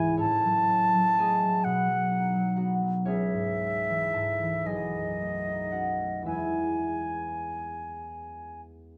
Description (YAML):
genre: classical, romantic duo for flute and harp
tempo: 35-44 BPM (dotted quarters)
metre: 6/8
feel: rubato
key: E major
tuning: A4 = 440 Hz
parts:
  - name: concert flute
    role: melody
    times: 0.0-8.6 s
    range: D#5 to A5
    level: -30 LUFS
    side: equal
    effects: none
  - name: concert harp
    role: accompaniment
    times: 0.0-9.0 s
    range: B1 to A5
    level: -32 LUFS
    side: equal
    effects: none
room: light reverb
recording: none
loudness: -27 LUFS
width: mono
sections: 0.0-9.0 A section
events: none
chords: 0.2 F#m/A; 1.6 B; 3.1 C#m; 4.7 B13; 6.3 E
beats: | 0.18 1.64 | 3.06 4.67 | 6.26 7.84